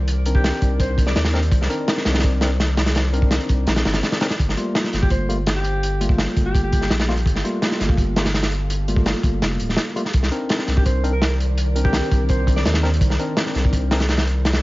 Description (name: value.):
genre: drum and bass, jungle.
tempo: 167 BPM.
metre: 4/4.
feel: straight.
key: unclear.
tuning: A4 = 440 Hz.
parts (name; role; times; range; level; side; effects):
ethereal airy pad; sustained chords; 0.0-14.6 s; Eb3 to F5; -32 LUFS; right 1 dB; ensemble chorus, built-in reverb.
saturated sub bass; bass; 0.0-14.6 s; D1 to Eb2; -21 LUFS; equal; none.
crunchy breakbeat drum kit; drums; 0.1-14.6 s; hi-hat, kick drum, snare drum; -20 LUFS; equal; none.
breathy alto saxophone; melody; 0.3-1.2, 5.0-6.9, 10.8-12.7 s; G4 to D5; -29 LUFS; equal; vintage 12-bit sampler grit, dub echo.
tine electric piano; stabs; 0.3-14.0 s; G3 to Bb4; -26 LUFS; left 2 dB; dub echo.
room: small room ambience.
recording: vinyl crackle, nothing above 7.5 kHz.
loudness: -17 LUFS.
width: side -19 dB against mid.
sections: 0.0-14.6 A section.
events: none.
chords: 0.0 Cm9; 4.4 Gm9; 10.1 Cm9.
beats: | 0.08 0.44 0.80 1.16 | 1.52 1.88 2.23 2.59 | 2.95 3.31 3.67 4.03 | 4.39 4.75 5.11 5.47 | 5.83 6.19 6.55 6.91 | 7.26 7.62 7.98 8.34 | 8.70 9.06 9.42 9.78 | 10.14 10.50 10.86 11.22 | 11.58 11.94 12.29 12.65 | 13.01 13.37 13.73 14.09 | 14.45.